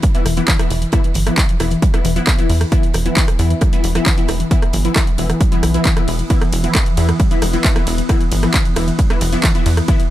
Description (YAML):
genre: driving peak-time techno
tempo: 134 BPM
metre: 4/4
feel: straight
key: unclear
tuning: A4 = 440 Hz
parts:
  - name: warbly dusty pluck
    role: riff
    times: 0.0-9.9 s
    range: E3 to E4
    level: -24 LUFS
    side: equal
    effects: chorus, sidechain pumping, digital delay
  - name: swarming drone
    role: drone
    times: 1.7-10.1 s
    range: E3 to B3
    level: -27 LUFS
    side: equal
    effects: built-in reverb, sidechain pumping
  - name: compact cocktail drum kit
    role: drums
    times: 0.0-10.0 s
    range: hi-hat, snare drum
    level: -34 LUFS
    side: right 5 dB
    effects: none
  - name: electronic kick drum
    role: drums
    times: 0.0-10.0 s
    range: none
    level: -15 LUFS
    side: equal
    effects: overdrive, studio reverb
  - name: techno drum kit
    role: drums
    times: 0.0-10.1 s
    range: handclaps, hi-hat, ride cymbal, rim click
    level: -22 LUFS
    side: right 1 dB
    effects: overdrive, studio reverb
  - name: rave stab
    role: stabs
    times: 0.1-10.0 s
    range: E3 to E4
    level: -22 LUFS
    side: left 2 dB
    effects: chorus, built-in reverb, sidechain pumping, ping-pong delay
  - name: tight sequencer bass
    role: bass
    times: 0.3-9.8 s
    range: E1 to E2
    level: -18 LUFS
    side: equal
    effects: sidechain pumping
room: little or no reverb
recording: none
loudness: -13 LUFS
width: side -14 dB against mid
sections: 0.0-10.1 A section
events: none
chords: 0.0 E5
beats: 0.03 0.48 | 0.93 1.38 1.82 2.27 | 2.72 3.17 3.61 4.06 | 4.51 4.96 5.41 5.85 | 6.30 6.75 7.20 7.64 | 8.09 8.54 8.99 9.44 | 9.88